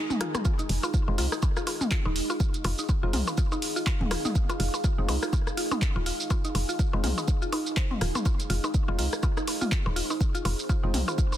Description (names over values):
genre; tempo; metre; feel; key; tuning
minimal techno; 123 BPM; 4/4; swing 58% on 16ths; F minor; A4 = 442 Hz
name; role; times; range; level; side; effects
deep dark ambient pad; texture; 0.0-11.4 s; Eb4 to Bb5; -34 LUFS; right 2 dB; chorus, built-in reverb, sidechain pumping
punchy analog drum machine; drums; 0.1-11.4 s; handclaps, hi-hat, shaker; -34 LUFS; right 2 dB; none
minimal click drum kit; percussion; 0.1-11.4 s; percussion blips, rim click, toms; -33 LUFS; left 2 dB; soft clipping on snare, dub echo
mallet-like synth pluck; riff; 0.2-11.3 s; C4 to C5; -36 LUFS; equal; chorus, vintage 12-bit sampler grit, sidechain pumping, ping-pong delay
electronic kick drum; drums; 0.5-11.3 s; none; -26 LUFS; equal; none
woody FM bass; bass; 0.7-11.0 s; Eb1 to C2; -28 LUFS; equal; sidechain pumping
percussive organ stab; stabs; 1.1-11.0 s; Ab3 to F4; -38 LUFS; left 2 dB; chorus, dub echo
room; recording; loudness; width
little or no reverb; dense, heavily limited modern master; -24 LUFS; side -12 dB against mid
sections
0.0-11.4 A section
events
break 0.0-0.5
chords
0.0 Fm7